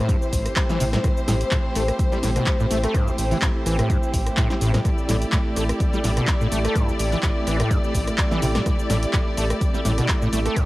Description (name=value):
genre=acid house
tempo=126 BPM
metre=4/4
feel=swing 54% on 16ths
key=A minor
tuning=A4 = 441 Hz
part: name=warm studio string section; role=sustained chords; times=0.0-10.7 s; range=A3 to D5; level=-27 LUFS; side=equal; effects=sidechain pumping, cassette tape
part: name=overdriven acid bass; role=riff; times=0.0-10.7 s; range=A1 to C4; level=-26 LUFS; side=equal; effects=ensemble chorus, sidechain pumping, cassette tape, analog delay
part: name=warbly tape-like pad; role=texture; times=0.0-10.7 s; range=C4 to G5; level=-33 LUFS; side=equal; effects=chorus, built-in reverb, sidechain pumping, cassette tape
part: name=electronic kick drum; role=drums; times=0.1-10.7 s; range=none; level=-22 LUFS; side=equal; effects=overdrive, small room ambience, cassette tape
part: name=punchy analog drum machine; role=drums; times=0.1-10.7 s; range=handclaps, hi-hat, rim click, shaker, snare drum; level=-28 LUFS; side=equal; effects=overdrive, small room ambience, cassette tape
part: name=round analog bass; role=bass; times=0.3-10.5 s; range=A1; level=-24 LUFS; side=equal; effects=sidechain pumping
room=little or no reverb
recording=home recording on cassette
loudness=-19 LUFS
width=side -18 dB against mid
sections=0.0-10.7 A section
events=none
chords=0.0 Am7